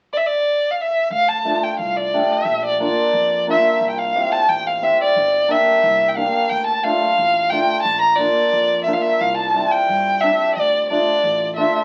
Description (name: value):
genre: klezmer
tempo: 89 BPM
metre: 2/4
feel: straight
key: D minor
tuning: A4 = 440 Hz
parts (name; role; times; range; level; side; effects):
- dark violin; melody; 0.1-11.8 s; D5 to Bb5; -19 LUFS; equal; none
- upright bass; bass; 1.1-11.6 s; G1 to G2; -38 LUFS; equal; none
- cimbalom; accompaniment; 1.4-11.7 s; G3 to G4; -25 LUFS; equal; none
room: wet studio reverb, RT60 0.5 s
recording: very old 78 rpm record, vinyl crackle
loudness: -18 LUFS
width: mono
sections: 0.0-1.1 A section; 1.1-11.8 B section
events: none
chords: 0.0 N.C.; 1.1 Dm; 2.5 Bb; 3.8 C; 5.2 Gm; 6.5 Dm; 7.9 Bb; 9.2 C; 10.6 Dm